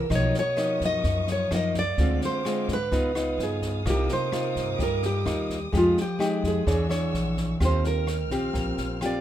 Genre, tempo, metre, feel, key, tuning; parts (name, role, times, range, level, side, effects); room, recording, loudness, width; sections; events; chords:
bossa nova; 128 BPM; 4/4; straight; Eb major; A4 = 444 Hz
nylon-string guitar; melody; 0.0-9.2 s; F4 to D#5; -27 LUFS; right 1 dB
nylon-string guitar; accompaniment; 0.0-9.2 s; F#2 to C#5; -28 LUFS; left 2 dB
warm studio string section; sustained chords; 0.0-9.2 s; Ab3 to F6; -37 LUFS; equal
upright bass; bass; 0.0-9.2 s; Bb1 to Ab2; -28 LUFS; equal
open jazz drum kit; drums; 0.1-9.1 s; kick drum, rim click, snare drum; -34 LUFS; equal
light reverb; minimal, uncompressed stereo recording; -23 LUFS; side -11 dB against mid
0.0-7.6 A section; 7.6-9.2 B section
nylon-string guitar solo 7.6-9.2
0.1 Bmaj9#11; 2.0 Dm7b5; 2.9 Db9; 3.9 Cm11; 5.7 Fm9; 6.7 E13; 7.6 Eb69